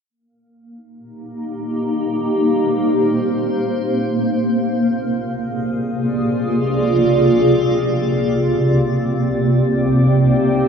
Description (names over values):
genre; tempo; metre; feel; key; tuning
ambient; free time; none; none; C minor; A4 = 439 Hz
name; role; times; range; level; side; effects
granular cloud pad; sustained chords; 1.3-10.7 s; C3 to D5; -16 LUFS; equal; built-in reverb
organ-like drone; drone; 9.0-10.7 s; C3 to C4; -23 LUFS; left 4 dB; ensemble chorus, built-in reverb
room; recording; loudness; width
wet echo chamber reverb, RT60 2.1 s; none; -15 LUFS; side -6 dB against mid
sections
0.1-10.7 A section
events
none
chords
0.1 Cm7; 4.3 Bb7/C; 8.5 Ebmaj7/C